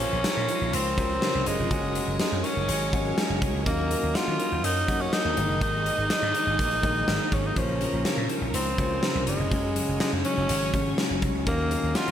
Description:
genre	1980s-style pop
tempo	123 BPM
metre	4/4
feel	straight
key	Bb minor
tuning	A4 = 438 Hz
part	raspy tenor saxophone	melody	0.0-12.1 s	Ab3 to F4	-28 LUFS	equal	none
part	warm grand piano	accompaniment	0.0-12.1 s	Db3 to C5	-31 LUFS	left 3 dB	none
part	string machine, full ensemble	sustained chords	0.0-12.1 s	Gb3 to Eb6	-36 LUFS	equal	phaser, ensemble chorus
part	direct-recorded clean electric guitar	riff	0.0-12.1 s	Eb3 to Gb4	-36 LUFS	right 4 dB	lush chorus
part	vintage slap bass	bass	0.0-12.1 s	F1 to Eb3	-30 LUFS	equal	none
part	big rock drum kit	drums	0.0-12.1 s	hi-hat, kick drum, snare drum	-28 LUFS	equal	gated reverb
room	light reverb, studio ambience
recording	none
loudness	-23 LUFS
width	side -10 dB against mid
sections	0.0-12.1 A section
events	none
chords	0.0 Bbmadd9; 1.7 Gbsus2; 3.7 Ebm7; 5.4 Absus2; 7.6 Bbmadd9; 9.5 Gbsus2; 11.5 Ebm7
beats	0.25 0.74 1.22 | 1.71 2.20 2.69 3.17 | 3.66 4.15 4.64 5.13 | 5.61 6.10 6.59 7.08 | 7.57 8.05 8.54 9.03 | 9.52 10.01 10.49 10.98 | 11.47 11.96

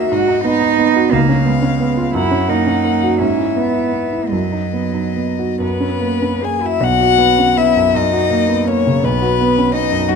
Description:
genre	classical, slow romantic movement for piano trio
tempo	44-59 BPM (dotted quarters)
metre	6/8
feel	rubato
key	B major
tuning	A4 = 439 Hz
part	rich violin	melody	0.0-10.2 s	F#4 to G#5	-18 LUFS	left 12 dB	none
part	rich cello	second line	0.0-10.2 s	F#3 to G#4	-19 LUFS	right 6 dB	none
part	warm concert grand piano	accompaniment	0.0-10.2 s	B1 to A#4	-16 LUFS	right 2 dB	none
room	wet large studio reverb, RT60 1.3 s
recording	dark, warm production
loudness	-13 LUFS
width	side -6 dB against mid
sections	0.0-6.8 A section; 6.8-10.2 B section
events	none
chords	0.1 G#m7; 1.1 C#7; 2.2 F#; 3.2 E/G#; 4.3 B/F#; 5.6 F#; 6.8 B5; 7.9 F#; 9.0 B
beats	| 0.11 1.13 | 2.16 3.21 | 4.33 5.62 | 6.82 7.94 | 9.02 10.07

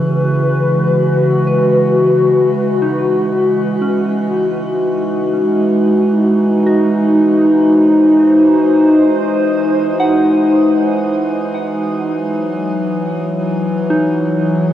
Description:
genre	ambient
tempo	59 BPM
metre	4/4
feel	straight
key	unclear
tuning	A4 = 442 Hz
part	warbly tape-like pad	sustained chords	0.0-14.7 s	C#3 to B#4	-12 LUFS	equal	chorus, built-in reverb, shimmer reverb
part	soft synth bell	arpeggios	0.0-14.7 s	C#4 to F#6	-25 LUFS	equal	chorus, tape echo, shimmer reverb
part	pedal harmonium	drone	0.0-14.7 s	E3	-25 LUFS	right 2 dB	stereo widening
room	wet huge ambient reverb, RT60 9.3 s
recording	worn, warbling old tape, cassette tape, warbly pitch drift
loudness	-11 LUFS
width	side -11 dB against mid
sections	0.0-14.7 A section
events	fade-in on synth bell 0.0-14.7; fade-in on harmonium 0.0-14.7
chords	0.0 C#m11; 4.0 G#7; 12.1 F#7sus2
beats	0.96 1.95 2.96 | 3.96 4.97 5.98 6.99 | 7.99 9.01 10.04 11.07 | 12.10 13.12 14.13

